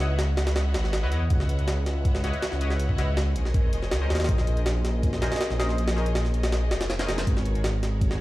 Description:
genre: drum and bass, jungle.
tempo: 161 BPM.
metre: 4/4.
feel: straight.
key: unclear.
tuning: A4 = 442 Hz.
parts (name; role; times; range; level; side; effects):
warm symphonic string section; sustained chords; 0.0-8.2 s; C#4 to F#5; -35 LUFS; left 1 dB; vintage 12-bit sampler grit.
band-passed chord stab; stabs; 0.0-7.3 s; C#4 to F#5; -36 LUFS; left 2 dB; lush chorus, dub echo.
dark detuned saw bass; bass; 0.0-8.2 s; E#1 to E2; -25 LUFS; equal; none.
jungle sampler-style drum kit; drums; 0.0-8.2 s; hi-hat, kick drum, snare drum; -27 LUFS; equal; none.
room: digital ambience.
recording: played on a big sound system in a bare room, large studio reverb, vinyl crackle.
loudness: -23 LUFS.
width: side -17 dB against mid.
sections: 0.0-7.3 A section.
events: drop 0.0-7.3.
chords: 0.0 C#m11; 3.5 A#m11; 7.3 G#m11.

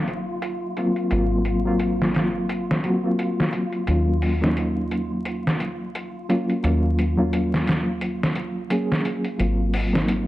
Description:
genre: trip hop.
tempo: 87 BPM.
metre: 4/4.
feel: swing 57% on 16ths.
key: Eb dorian.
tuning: A4 = 439 Hz.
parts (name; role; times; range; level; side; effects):
reed electric piano; accompaniment; 0.0-10.3 s; Gb3 to Ab4; -23 LUFS; equal; fast tremolo, harmonic tremolo, low-pass filter, tape echo.
deep dub fingered electric bass; bass; 0.0-10.3 s; Ab1 to Eb2; -25 LUFS; equal; tube saturation.
wind-like tuned noise texture; texture; 0.0-10.3 s; F4; -33 LUFS; equal; built-in reverb.
trip hop sampler-style drum kit; drums; 0.1-10.3 s; hi-hat, snare drum; -26 LUFS; equal; low-pass filter on hats, low-pass filter on snare.
room: light reverb, digital ambience.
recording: vinyl crackle, nothing above 10.4 kHz.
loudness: -20 LUFS.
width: side -16 dB against mid.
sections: 0.0-10.3 A section.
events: filter sweep on reed electric piano 0.0-10.3.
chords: 0.0 Ab13; 3.9 Ebm9; 9.4 Ab13.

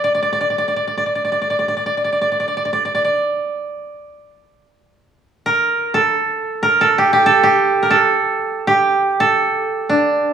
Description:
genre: japanese traditional, Japanese chamber music.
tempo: free time.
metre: none.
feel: none.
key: unclear.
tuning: A4 = 441 Hz.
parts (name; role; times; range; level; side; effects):
koto; solo; 0.0-10.3 s; D4 to D5; -14 LUFS; right 2 dB; none.
room: moderate recital hall reverb, RT60 1.7 s.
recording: studio reverb.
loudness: -14 LUFS.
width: side -8 dB against mid.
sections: 0.0-10.3 A section.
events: slowing down 5.5-10.3.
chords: none.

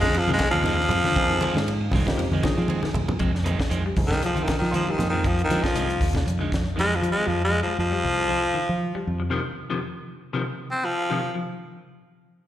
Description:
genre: afrobeat.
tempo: 118 BPM.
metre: 4/4.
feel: swing 54% on 16ths.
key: F dorian.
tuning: A4 = 440 Hz.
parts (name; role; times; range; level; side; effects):
raspy baritone saxophone; melody; 0.0-11.3 s; Eb3 to C4; -23 LUFS; equal; slapback echo.
barky tine electric piano; accompaniment; 0.0-5.2 s; F3 to Ab5; -32 LUFS; right 2 dB; overdrive, phaser, slapback echo.
semi-hollow electric guitar; arpeggios; 0.0-11.5 s; C3 to Ab3; -31 LUFS; left 4 dB; slapback echo.
electric guitar at the edge of break-up; stabs; 0.0-7.3 s; Eb3 to C4; -33 LUFS; right 7 dB; slapback echo.
fingered electric bass; bass; 0.0-9.3 s; C2 to F3; -26 LUFS; equal; none.
tight funk drum kit; drums; 0.0-7.2 s; hi-hat, kick drum, ride cymbal, snare drum; -28 LUFS; equal; none.
congas; percussion; 0.3-5.1 s; none; -29 LUFS; equal; none.
room: light reverb.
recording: live gig heard through the venue's PA, recital hall reverb.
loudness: -21 LUFS.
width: side -12 dB against mid.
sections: 0.0-3.2 A section; 3.2-11.4 B section; 11.4-12.5 C section.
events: baritone saxophone solo 0.0-3.2, 3.2-11.4; tine electric piano fill 2.2-3.2; drum fill 2.7-3.2; band accent 9.3-11.4.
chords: 0.0 Fm7; 11.4 N.C..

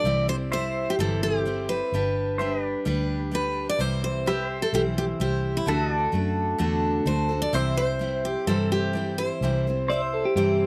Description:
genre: honky-tonk and classic country.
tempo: 128 BPM.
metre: 4/4.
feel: straight.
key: C lydian.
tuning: A4 = 441 Hz.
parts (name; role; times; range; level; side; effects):
picked steel-string acoustic guitar; melody; 0.0-10.7 s; E4 to D5; -30 LUFS; equal; slapback echo.
picked steel-string acoustic guitar; accompaniment; 0.0-10.7 s; C3 to C5; -31 LUFS; equal; none.
pedal steel guitar; sustained chords; 0.0-10.7 s; A4 to E5; -37 LUFS; equal; lush chorus.
vintage muted fingered electric bass; bass; 0.0-10.7 s; G1 to G2; -30 LUFS; equal; none.
clean electric guitar; second line; 9.9-10.7 s; G4 to D5; -26 LUFS; equal; none.
room: little or no reverb.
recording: recorded outdoors, with no room sound, faint mains hum.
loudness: -25 LUFS.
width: mono.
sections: 0.0-10.7 A section.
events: none.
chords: 0.1 C; 1.9 G; 3.8 C; 5.7 D; 7.5 C.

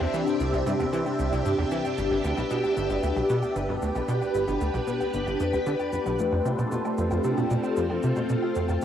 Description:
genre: ambient, sequencer-driven space music.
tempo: 114 BPM.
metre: 4/4.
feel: straight.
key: unclear.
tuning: A4 = 440 Hz.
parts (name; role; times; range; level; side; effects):
phased string machine; sustained chords; 0.0-8.8 s; C3 to E5; -26 LUFS; equal; ensemble chorus, phaser, cassette tape.
Celtic harp; arpeggios; 0.0-8.8 s; A3 to B5; -32 LUFS; left 2 dB; auto-pan, cassette tape, tape echo.
plucky analog bass; riff; 0.0-8.8 s; G1 to E3; -28 LUFS; equal; lush chorus, cassette tape, tape echo.
woodblock and shaker; percussion; 0.0-8.8 s; none; -43 LUFS; equal; cassette tape, tape echo.
room: wet booth ambience, RT60 0.2 s.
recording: home recording on cassette.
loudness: -24 LUFS.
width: side -9 dB against mid.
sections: 0.0-8.8 A section.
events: none.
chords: 0.0 Cadd9; 2.0 G; 6.2 F.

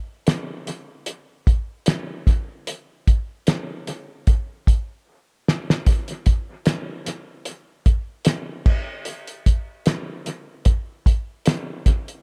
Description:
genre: indie pop.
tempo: 75 BPM.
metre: 4/4.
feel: swing 55% on 16ths.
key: none.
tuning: none.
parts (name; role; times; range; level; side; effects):
cloth-damped thuddy drum kit; drums; 0.3-12.2 s; crash cymbal, hi-hat, kick drum, snare drum; -21 LUFS; equal; dub echo.
room: light reverb.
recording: echo-heavy mix.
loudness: -22 LUFS.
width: mono.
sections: 0.0-12.2 A section.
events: drum fill 5.1-5.9.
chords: none.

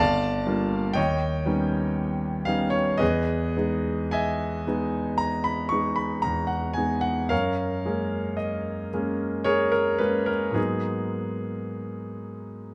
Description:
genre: classical, impressionist solo piano.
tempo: 56 BPM.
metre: 3/4.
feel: uneven beats, rubato.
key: unclear.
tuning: A4 = 441 Hz.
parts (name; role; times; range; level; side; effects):
clear grand piano; solo; 0.0-12.7 s; G1 to C#6; -26 LUFS; equal; none.
room: light reverb.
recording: close, detailed microphones.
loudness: -26 LUFS.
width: mono.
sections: 0.0-12.7 A section.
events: none.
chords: 0.0 Gm7; 1.0 D#aug7; 3.0 Emaj7; 7.3 F#add9; 10.6 G#m9.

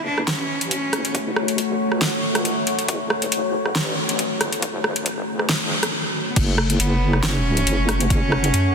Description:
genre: deep dubstep.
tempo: 138 BPM.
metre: 4/4.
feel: swing 54% on 16ths, half-time.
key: F# minor.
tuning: A4 = 440 Hz.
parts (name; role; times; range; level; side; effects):
warm cello; melody; 0.0-2.0, 6.3-8.7 s; A3 to D4; -26 LUFS; right 1 dB; dub echo.
deep dark ambient pad; sustained chords; 0.1-8.7 s; A3 to C#5; -26 LUFS; left 2 dB; chorus, built-in reverb.
deep soft wobble bass; bass; 0.0-8.7 s; F#1 to F#2; -24 LUFS; equal; chorus, high-pass filter.
deep house drum kit; drums; 0.2-8.6 s; crash cymbal, hi-hat, rim click, snare drum; -22 LUFS; equal; overdrive, studio reverb.
electronic kick drum; drums; 1.1-8.2 s; none; -22 LUFS; equal; overdrive, high-pass filter on kick, studio reverb.
room: moderate huge ambient reverb, RT60 4.7 s.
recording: dense, heavily limited modern master.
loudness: -19 LUFS.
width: side -6 dB against mid.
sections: 0.0-6.4 A section; 6.4-8.7 B section.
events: build-up 0.0-6.4; break 5.9-6.4; drop 6.4-8.7.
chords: 0.0 F#m.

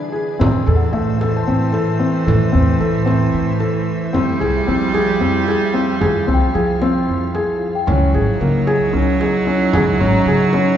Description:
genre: contemporary instrumental, chamber music in an uneven meter.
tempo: 225 BPM (eighths).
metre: 7/8.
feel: straight.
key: unclear.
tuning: A4 = 441 Hz.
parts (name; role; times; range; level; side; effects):
rich cello; second line; 0.0-10.8 s; D3 to G3; -20 LUFS; right 3 dB; none.
soft additive organ-like pad; sustained chords; 0.0-10.8 s; E3 to C#5; -26 LUFS; left 1 dB; ensemble chorus, built-in reverb.
felt-muted upright piano; arpeggios; 0.0-10.8 s; A3 to A4; -19 LUFS; left 1 dB; none.
celesta; texture; 0.0-10.8 s; E5 to C6; -29 LUFS; left 5 dB; none.
upright bass; bass; 0.4-10.8 s; G#1 to F3; -19 LUFS; equal; none.
frame drum; percussion; 0.4-10.8 s; none; -25 LUFS; right 1 dB; none.
room: wet concert hall reverb, RT60 2.2 s.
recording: heard from further back in the room, nothing above 7.8 kHz.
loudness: -14 LUFS.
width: side -10 dB against mid.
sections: 0.4-10.8 A section.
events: break 0.0-0.4.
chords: 0.4 Am; 4.1 Fmadd9; 7.9 C#madd9.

